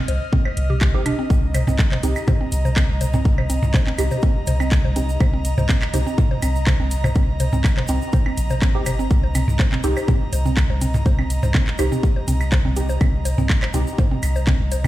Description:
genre	minimal techno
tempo	123 BPM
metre	4/4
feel	straight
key	C minor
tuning	A4 = 441 Hz
part	airy breathy pad	texture	0.0-14.9 s	Eb5 to F6	-31 LUFS	equal	chorus, sidechain pumping
part	mallet-like synth pluck	riff	0.1-14.9 s	C4 to C5	-28 LUFS	right 2 dB	chorus, sidechain pumping, dub echo
part	punchy sub bass	bass	0.1-14.9 s	G1 to C2	-21 LUFS	equal	sidechain pumping
part	house drum kit	drums	0.1-14.8 s	handclaps, hi-hat	-28 LUFS	equal	none
part	electronic kick drum	drums	0.3-14.6 s	none	-18 LUFS	equal	none
part	electronic toms and claves	percussion	0.3-14.9 s	none	-25 LUFS	equal	overdrive, ping-pong delay
part	filtered dub chord stab	stabs	0.9-13.8 s	C4 to G4	-28 LUFS	right 1 dB	phaser, ensemble chorus, ping-pong delay
part	tube shaker	percussion	1.3-14.9 s	none	-38 LUFS	right 1 dB	none
room	little or no reverb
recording	played on a big sound system in a bare room, stone room reverb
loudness	-17 LUFS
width	side -15 dB against mid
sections	0.0-14.9 A section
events	none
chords	0.0 Cm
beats	0.33 0.81 | 1.30 1.79 2.28 2.77 | 3.25 3.74 4.23 4.72 | 5.20 5.69 6.18 6.67 | 7.16 7.64 8.13 8.62 | 9.11 9.59 10.08 10.57 | 11.06 11.55 12.03 12.52 | 13.01 13.50 13.98 14.47

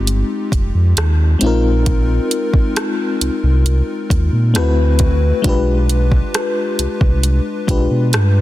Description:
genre	contemporary R&B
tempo	67 BPM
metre	4/4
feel	straight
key	unclear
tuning	A4 = 441 Hz
part	FM electric piano with soft pad layer	accompaniment	0.0-8.4 s	Ab3 to B4	-19 LUFS	left 3 dB	chorus, tremolo
part	sub bass with octave	bass	0.0-8.4 s	F1 to B2	-14 LUFS	equal	none
part	smooth R&B drum kit	drums	0.1-8.3 s	hi-hat, kick drum, rim click	-18 LUFS	equal	none
room	digital ambience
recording	dense, heavily limited modern master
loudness	-13 LUFS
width	side -15 dB against mid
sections	0.0-8.4 A section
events	none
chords	0.0 Fm7; 1.4 Bb9sus4; 4.5 D13; 5.4 G7b9/B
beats	0.07 0.97 | 1.86 2.76 3.65 4.55 | 5.45 6.34 7.24 8.13

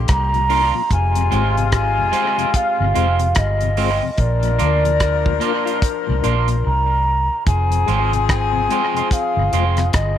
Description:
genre	roots reggae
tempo	73 BPM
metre	4/4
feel	swing 61% on 16ths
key	F dorian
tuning	A4 = 440 Hz
part	warm horn section	second line	0.0-10.2 s	C3 to Bb4	-24 LUFS	left 12 dB	tape echo
part	vintage muted fingered electric bass	bass	0.0-10.2 s	F1 to D2	-19 LUFS	right 1 dB	none
part	mellow hollow silver concert flute	melody	0.1-10.2 s	D5 to Bb5	-20 LUFS	right 1 dB	tape echo
part	damped 70s drum kit	drums	0.1-10.2 s	hi-hat, kick drum, rim click	-21 LUFS	equal	tape echo
part	mellow tonewheel organ	accompaniment	0.3-9.9 s	F2 to F4	-27 LUFS	left 12 dB	chorus vibrato, slow rotary speaker
part	electric guitar at the edge of break-up	accompaniment	0.5-9.8 s	Ab3 to F4	-25 LUFS	right 10 dB	wide subtle chorus, tape echo
room	moderate spring reverb, RT60 2.2 s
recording	1960s-style stereo with parts hard left and right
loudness	-15 LUFS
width	side -10 dB against mid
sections	0.0-10.2 A section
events	drums muted 6.7-7.5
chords	0.0 Bb; 0.9 Fm; 4.2 Bb; 7.5 Fm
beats	0.08 | 0.90 1.72 2.54 3.37 | 4.19 5.01 5.83 6.65 | 7.47 8.29 9.11 9.93

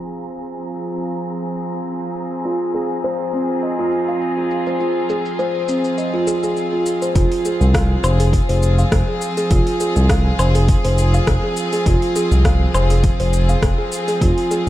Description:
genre	organic downtempo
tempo	102 BPM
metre	4/4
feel	swing 54% on 16ths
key	F minor pentatonic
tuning	A4 = 440 Hz
part	rich chamber string section	sustained chords	0.0-14.7 s	F3 to Ab4	-23 LUFS	equal	sidechain pumping, low-pass filter
part	wind-like tuned noise texture	texture	0.0-7.2 s	Bb5	-36 LUFS	right 2 dB	built-in reverb
part	deep house drum kit	drums	0.1-14.6 s	hi-hat, rim click, shaker, woodblock	-26 LUFS	left 1 dB	overdrive
part	kalimba	arpeggios	2.5-14.7 s	C4 to F5	-20 LUFS	equal	digital delay
part	smooth synth bass	bass	7.2-14.7 s	F1 to C2	-16 LUFS	equal	tube saturation, sidechain pumping
part	electronic kick drum	drums	7.2-14.3 s	none	-18 LUFS	equal	overdrive
room	light reverb, digital ambience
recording	dark, warm production, low-pass filter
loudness	-15 LUFS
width	side -14 dB against mid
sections	0.0-7.2 A section; 7.2-14.7 B section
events	filter sweep on string section 0.0-7.2; filter sweep 0.0-7.2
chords	0.0 Fm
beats	| 0.10 0.68 1.27 1.86 | 2.45 3.04 3.62 4.21 | 4.80 5.39 5.98 6.57 | 7.16 7.74 8.33 8.92 | 9.51 10.10 10.68 11.27 | 11.86 12.45 13.04 13.62 | 14.21

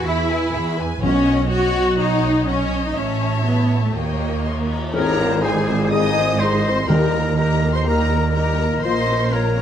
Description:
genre	cinematic, heroic adventure film score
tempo	123 BPM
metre	4/4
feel	straight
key	B mixolydian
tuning	A4 = 440 Hz
part	dark symphonic violin section	melody	0.0-9.6 s	F#5 to Eb6	-28 LUFS	left 2 dB	none
part	rich studio violin section	second line	0.0-9.6 s	G#4 to G#5	-27 LUFS	left 4 dB	none
part	rich studio viola section	accompaniment	0.0-9.6 s	G3 to C5	-25 LUFS	left 2 dB	none
part	rich studio double bass section	bass	0.0-9.6 s	Ab1 to E2	-22 LUFS	right 3 dB	none
part	rich symphonic cello section	bass	0.0-9.6 s	Eb2 to F#4	-24 LUFS	right 2 dB	none
part	cymbal swell and tam-tam	percussion	1.0-6.9 s	none	-28 LUFS	left 2 dB	none
part	timpani	percussion	1.0-1.7, 6.9-7.6 s	B2 to Eb3	-23 LUFS	equal	none
part	bright clarinet	second line	4.9-9.6 s	Ab4 to Eb5	-26 LUFS	left 3 dB	none
part	silver concert flute	second line	4.9-9.6 s	C5 to Ab5	-26 LUFS	left 1 dB	none
part	mellow French horn section	sustained chords	4.9-9.0 s	Bb3 to Ab4	-26 LUFS	left 6 dB	none
room	light reverb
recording	close, detailed microphones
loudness	-16 LUFS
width	side -9 dB against mid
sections	0.0-4.9 A section; 4.9-9.6 B section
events	band accent 4.9-5.4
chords	0.0 E; 1.0 Badd9; 3.0 A; 4.0 D#7; 4.9 Ab; 6.9 Eb; 8.8 Bbm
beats	0.05 0.54 | 1.03 1.52 2.00 2.49 | 2.98 3.47 3.96 4.46 | 4.95 5.44 5.92 6.41 | 6.90 7.38 7.87 8.35 | 8.84 9.32

